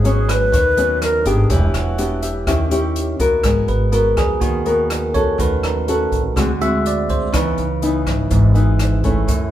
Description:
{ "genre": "bossa nova", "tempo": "123 BPM", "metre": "4/4", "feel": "straight", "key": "G# minor from 3.4 s", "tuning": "A4 = 440 Hz", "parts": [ { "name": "bright reedy wooden-headed alto flute", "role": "melody", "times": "0.0-3.2 s", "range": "F#4 to B4", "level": "-20 LUFS", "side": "left 1 dB", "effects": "none" }, { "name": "nylon-string guitar", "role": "accompaniment", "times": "0.0-9.5 s", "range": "F#2 to A#4", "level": "-20 LUFS", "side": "left 2 dB", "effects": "none" }, { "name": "upright bass", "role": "bass", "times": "0.0-9.5 s", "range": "E1 to F#2", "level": "-19 LUFS", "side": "equal", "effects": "none" }, { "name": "open jazz drum kit", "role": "drums", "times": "0.0-9.4 s", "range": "hi-hat, kick drum, rim click", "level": "-22 LUFS", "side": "equal", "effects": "none" }, { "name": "bell-like tine electric piano", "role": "accompaniment", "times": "0.3-9.5 s", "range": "E3 to E5", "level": "-23 LUFS", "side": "right 4 dB", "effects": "none" } ], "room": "moderate large studio reverb, RT60 1.2 s", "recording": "band playing live in one room", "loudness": "-15 LUFS", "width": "side -12 dB against mid", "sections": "0.0-3.4 A section; 3.4-9.5 B section", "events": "tine electric piano solo 3.4-9.5", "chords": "0.0 G#m7; 1.5 Em7; 2.5 D#7b9; 3.4 G#m9; 5.4 D#m7b5; 6.4 D7#11; 7.3 C#m9" }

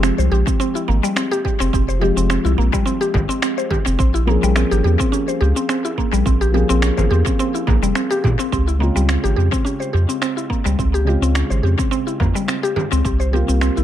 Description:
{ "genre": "organic downtempo", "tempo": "106 BPM", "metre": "4/4", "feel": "swing 54% on 16ths", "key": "unclear", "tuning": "A4 = 441 Hz", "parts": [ { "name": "felt-muted upright piano", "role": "accompaniment", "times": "0.0-13.8 s", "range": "C3 to Ab4", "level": "-24 LUFS", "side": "left 2 dB", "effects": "sidechain pumping, tape echo" }, { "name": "mallet-like synth pluck", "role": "arpeggios", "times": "0.0-13.8 s", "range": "G3 to C5", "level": "-20 LUFS", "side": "equal", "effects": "chorus, tape echo" }, { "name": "warm sub bass", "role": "bass", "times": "0.0-13.8 s", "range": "F1 to Bb2", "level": "-17 LUFS", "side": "equal", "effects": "sidechain pumping" }, { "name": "electronic finger snaps and cabasa", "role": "drums", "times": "0.0-13.8 s", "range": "none", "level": "-27 LUFS", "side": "right 1 dB", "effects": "tape echo" }, { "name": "electronic kick drum", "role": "drums", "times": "0.5-13.2 s", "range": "none", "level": "-21 LUFS", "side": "equal", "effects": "none" }, { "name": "frame drum", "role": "percussion", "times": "3.1-8.4, 12.2-12.9 s", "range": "none", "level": "-25 LUFS", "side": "left 2 dB", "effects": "none" } ], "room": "light reverb", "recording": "echo-heavy mix", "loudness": "-15 LUFS", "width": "side -11 dB against mid", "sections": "0.0-8.5 A section; 8.5-13.8 B section", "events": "none", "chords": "0.0 Fmadd9; 4.0 Bbm7; 8.5 Dbmaj7; 13.1 C7sus4" }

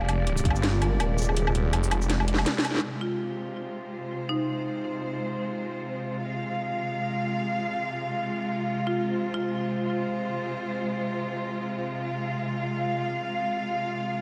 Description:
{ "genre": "half-time drum and bass", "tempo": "164 BPM", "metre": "4/4", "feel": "swing 58% on 16ths, half-time", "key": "F dorian", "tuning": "A4 = 440 Hz", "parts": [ { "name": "warm studio cello section", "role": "sustained chords", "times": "0.0-14.2 s", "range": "C3 to F5", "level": "-31 LUFS", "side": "equal", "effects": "sidechain pumping" }, { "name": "felt-muted upright piano", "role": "arpeggios", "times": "0.0-2.9 s", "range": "F4 to F5", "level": "-38 LUFS", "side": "equal", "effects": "ensemble chorus, analog delay" }, { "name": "phased detuned saw bass", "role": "bass", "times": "0.0-2.5 s", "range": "Eb1 to G1", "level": "-27 LUFS", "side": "equal", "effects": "phaser, tube saturation" }, { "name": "drum and bass drum kit", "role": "drums", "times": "0.0-2.8 s", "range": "hi-hat, shaker, snare drum, woodblock", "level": "-32 LUFS", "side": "equal", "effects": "none" }, { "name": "electronic kick drum", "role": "drums", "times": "0.5 s", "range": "none", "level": "-26 LUFS", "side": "equal", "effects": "none" }, { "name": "marimba with hard mallets", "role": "melody", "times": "3.0-4.8, 8.9-9.6 s", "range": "Eb4 to F4", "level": "-36 LUFS", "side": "equal", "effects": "analog delay" } ], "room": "wet huge ambient reverb, RT60 4.3 s", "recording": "dreamy mix soaked in reverb", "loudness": "-29 LUFS", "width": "mono", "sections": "0.0-2.8 A section; 2.8-14.2 B section", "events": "drop 0.0-2.8; kick drops out 1.4-2.8; drum fill 2.1-2.8", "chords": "0.0 Fm" }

